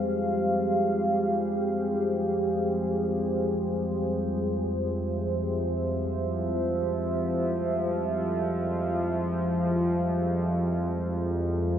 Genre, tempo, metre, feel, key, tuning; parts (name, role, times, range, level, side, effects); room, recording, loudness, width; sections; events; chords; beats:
dark ambient drone; free time; F harmonic minor; A4 = 437 Hz
deep dark ambient pad; sustained chords; 0.0-11.8 s; F4 to F5; -27 LUFS; equal; chorus, built-in reverb
analog drone; drone; 0.0-11.8 s; F2 to F3; -29 LUFS; equal; chorus
wet cathedral reverb, RT60 6.4 s; nothing above 7.6 kHz; -25 LUFS; side -9 dB against mid
0.0-11.8 A section
fade-in on synth drone 0.0-11.8
0.0 Fmadd9; 10.0 Bb5/F
free time